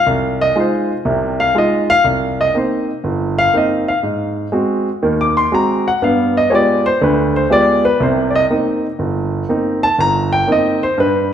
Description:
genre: solo jazz.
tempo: 121 BPM.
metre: 4/4.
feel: swing 69% on 8ths.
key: C minor.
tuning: A4 = 440 Hz.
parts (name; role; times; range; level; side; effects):
warm grand piano; solo; 0.0-11.3 s; G1 to D6; -13 LUFS; equal; none.
room: moderate scoring stage reverb, RT60 1.7 s.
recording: recorded in a church or concert hall.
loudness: -13 LUFS.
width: side -9 dB against mid.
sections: 0.0-11.3 A section.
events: grand piano solo 0.0-11.3.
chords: 0.0 Fm7; 2.0 Cm7; 4.0 Ab7; 6.0 G7b9; 8.0 Cm7.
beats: | 0.06 0.56 1.05 1.55 | 2.04 2.54 3.04 3.53 | 4.03 4.52 5.02 5.51 | 6.01 6.51 7.00 7.50 | 8.00 8.49 8.99 9.48 | 9.98 10.48 10.97.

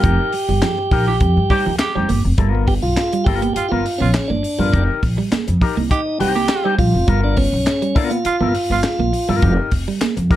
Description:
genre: funk.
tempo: 102 BPM.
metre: 4/4.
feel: straight.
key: unclear.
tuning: A4 = 440 Hz.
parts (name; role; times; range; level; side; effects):
tonewheel organ; melody; 0.0-9.5 s; C#4 to G4; -21 LUFS; right 1 dB; overdrive, stopped rotary speaker, plate reverb.
electric guitar with an envelope filter; accompaniment; 0.0-10.4 s; B3 to C5; -24 LUFS; left 7 dB; plate reverb.
clean electric guitar; riff; 0.0-10.2 s; F3 to B3; -24 LUFS; right 7 dB; spring reverb.
upright bass; bass; 0.0-10.3 s; F1 to G2; -19 LUFS; equal; none.
compact cocktail drum kit; drums; 0.0-10.4 s; handclaps, hi-hat, kick drum, snare drum; -21 LUFS; equal; none.
breathy tenor saxophone; second line; 1.1-8.8 s; F4 to G4; -24 LUFS; right 5 dB; none.
room: light reverb.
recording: dark, warm production.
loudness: -15 LUFS.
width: side -13 dB against mid.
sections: 0.0-2.4 A section; 2.4-10.4 B section.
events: band accent 0.0-2.4; tonewheel organ solo 2.4-10.4.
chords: 0.0 F9sus4; 2.4 G7#9; 4.7 F9sus4; 7.1 G7#9; 9.4 F9sus4.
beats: | 0.04 0.62 1.21 1.80 | 2.39 2.97 3.56 4.15 | 4.73 5.32 5.91 6.50 | 7.08 7.67 8.26 8.84 | 9.43 10.02.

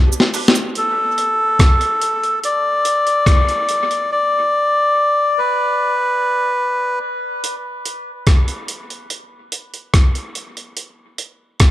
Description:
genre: dub reggae.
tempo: 72 BPM.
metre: 4/4.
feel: straight.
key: unclear.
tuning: A4 = 440 Hz.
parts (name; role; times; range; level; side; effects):
cabasa; percussion; 0.1-0.7 s; none; -27 LUFS; right 7 dB; high-pass filter on perc, dub echo.
breakbeat sampler-style drum kit; drums; 0.2-11.7 s; hi-hat, kick drum, rim click, snare drum; -15 LUFS; equal; none.
mellow electric guitar; accompaniment; 0.3-0.5 s; D4 to B4; -33 LUFS; right 2 dB; none.
melodica; melody; 0.8-7.0 s; A4 to D5; -16 LUFS; left 1 dB; dub echo.
room: moderate spring reverb, RT60 2.7 s.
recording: none.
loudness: -14 LUFS.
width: side -14 dB against mid.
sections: 0.8-11.7 A section.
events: break 0.0-0.8, 0.8-11.7; drum fill 0.0-0.8; filter sweep 0.0-4.1; part muted 4.1-7.4.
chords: 0.0 G; 0.8 N.C..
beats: | 0.76 1.59 2.43 3.26 | 4.09 4.93 5.76 6.60 | 7.43 8.27 9.10 9.93 | 10.77 11.60.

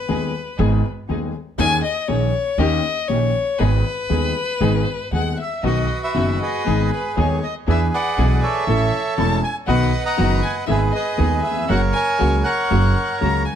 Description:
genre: tango.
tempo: 119 BPM.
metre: 4/4.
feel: rubato.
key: G# minor, B major from 5.6 s.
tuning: A4 = 444 Hz.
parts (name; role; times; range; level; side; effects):
warm violin; second line; 0.0-13.6 s; B4 to A#5; -25 LUFS; left 5 dB; none.
warm baby grand piano; accompaniment; 0.1-13.6 s; D#1 to A4; -23 LUFS; left 4 dB; none.
muted studio string section; stabs; 0.1-13.4 s; A#3 to A4; -30 LUFS; equal; none.
upright bass; bass; 0.1-13.4 s; E1 to E2; -20 LUFS; right 2 dB; none.
bandoneon; melody; 5.2-13.6 s; F#4 to A#5; -22 LUFS; right 3 dB; tape echo.
room: light reverb.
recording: close, detailed microphones.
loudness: -17 LUFS.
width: side -9 dB against mid.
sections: 0.0-5.6 A section; 5.6-13.6 B section.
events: violin solo 0.0-5.6.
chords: 0.0 G#m; 1.6 D#7sus4; 2.6 D#7; 3.6 G#m; 5.6 B; 6.7 G#m; 7.7 E7; 8.7 A; 9.7 B; 10.7 G#m; 11.7 F#.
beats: 0.09 0.59 1.09 | 1.59 2.09 2.59 3.09 | 3.60 4.11 4.62 5.13 | 5.64 6.16 6.67 7.17 | 7.67 8.18 8.68 9.18 | 9.68 10.18 10.68 11.19 | 11.69 12.20 12.70 13.22.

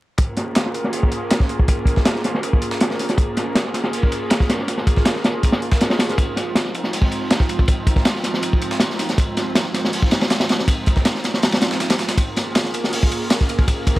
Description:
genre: drum and bass, jungle.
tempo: 160 BPM.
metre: 4/4.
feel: straight.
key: Bb minor.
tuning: A4 = 443 Hz.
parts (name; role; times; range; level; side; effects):
airy breathy pad; sustained chords; 0.3-14.0 s; F3 to Bb4; -25 LUFS; right 1 dB; chorus, vintage 12-bit sampler grit.
crunchy breakbeat drum kit; drums; 0.2-14.0 s; hi-hat, kick drum, ride cymbal, snare drum; -18 LUFS; equal; low-pass filter on kick, low-pass filter on cymbals, low-pass filter on hats, low-pass filter on snare, low-pass filter on room.
dusty soul sampler-style drum kit; drums; 0.2-14.0 s; hi-hat, snare drum; -29 LUFS; right 1 dB; overdrive, high-pass filter on hats, high-pass filter on snare, high-pass filter on room.
room: light reverb.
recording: vinyl crackle.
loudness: -17 LUFS.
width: side -17 dB against mid.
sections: 0.2-14.0 A section.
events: filter sweep on drum 0.2-14.0.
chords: 0.2 Bbm7; 6.2 Fm7; 12.2 Bbm7.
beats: | 0.18 0.56 0.93 1.31 | 1.68 2.06 2.43 2.81 | 3.18 3.56 3.93 4.31 | 4.68 5.06 5.43 5.81 | 6.18 6.56 6.93 7.31 | 7.68 8.06 8.43 8.81 | 9.18 9.56 9.93 10.31 | 10.68 11.06 11.43 11.81 | 12.18 12.56 12.93 13.31 | 13.68.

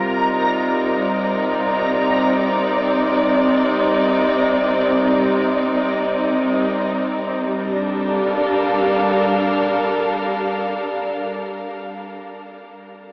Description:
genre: ambient.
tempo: free time.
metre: none.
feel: none.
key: G minor.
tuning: A4 = 439 Hz.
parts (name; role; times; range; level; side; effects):
rich studio string section; sustained chords; 0.0-11.8 s; C3 to F5; -17 LUFS; equal; shimmer reverb.
organ-like drone; drone; 0.0-11.2 s; G3; -30 LUFS; equal; ensemble chorus, built-in reverb.
backwards swelling texture; texture; 0.0-7.5 s; Bb5; -27 LUFS; equal; built-in reverb, shimmer reverb.
room: wet huge ambient reverb, RT60 8.2 s.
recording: dreamy mix soaked in reverb, AM radio sound.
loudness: -16 LUFS.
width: side -31 dB against mid.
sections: 0.0-7.5 A section; 7.5-11.5 B section.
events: none.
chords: 0.0 Cm7; 7.5 Gm7.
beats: free time.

